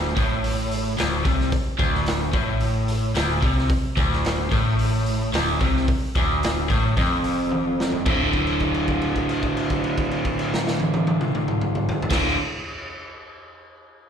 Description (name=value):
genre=blues rock power trio and southern rock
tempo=110 BPM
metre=4/4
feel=straight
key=D minor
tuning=A4 = 440 Hz
part: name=overdriven electric guitar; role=riff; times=0.0-12.4 s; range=D2 to D3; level=-22 LUFS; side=equal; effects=slapback echo
part: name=vintage muted fingered electric bass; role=bass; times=0.0-12.3 s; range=D1 to C2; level=-27 LUFS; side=equal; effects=none
part: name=raw garage drum kit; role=drums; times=0.2-12.2 s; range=crash cymbal, hi-hat, kick drum, snare drum, toms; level=-25 LUFS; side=equal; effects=none
room=light reverb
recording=live gig heard through the venue's PA, recital hall reverb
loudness=-20 LUFS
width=side -8 dB against mid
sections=0.0-8.1 A section; 8.1-12.4 B section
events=drum fill 7.5-8.1; held note 8.1-12.1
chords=0.0 Dm; 8.1 D5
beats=0.44 0.98 | 1.52 2.07 2.61 3.16 | 3.70 4.25 4.79 5.34 | 5.88 6.43 6.97 7.52 | 8.07 8.61 9.16 9.71 | 10.25 10.80 11.34 11.89